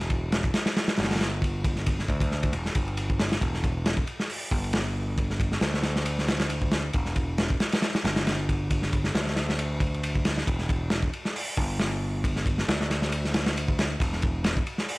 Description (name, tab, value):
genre	breakbeat, breaks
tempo	136 BPM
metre	4/4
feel	swing 55% on 16ths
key	E minor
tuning	A4 = 439 Hz
part	overdriven picked electric bass	bass	0.0-14.6 s	E1 to D2	-29 LUFS	equal	none
part	crunchy breakbeat drum kit	drums	0.0-15.0 s	hi-hat, kick drum, ride cymbal, snare drum	-26 LUFS	equal	none
room	little or no reverb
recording	vinyl crackle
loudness	-24 LUFS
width	side -22 dB against mid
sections	0.0-15.0 A section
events	none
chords	none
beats	0.33 0.77 1.21 | 1.65 2.09 2.53 2.97 | 3.42 3.86 4.30 4.74 | 5.18 5.62 6.06 6.50 | 6.94 7.38 7.83 8.27 | 8.71 9.15 9.59 10.03 | 10.47 10.91 11.36 11.80 | 12.24 12.68 13.12 13.56 | 14.00 14.44 14.88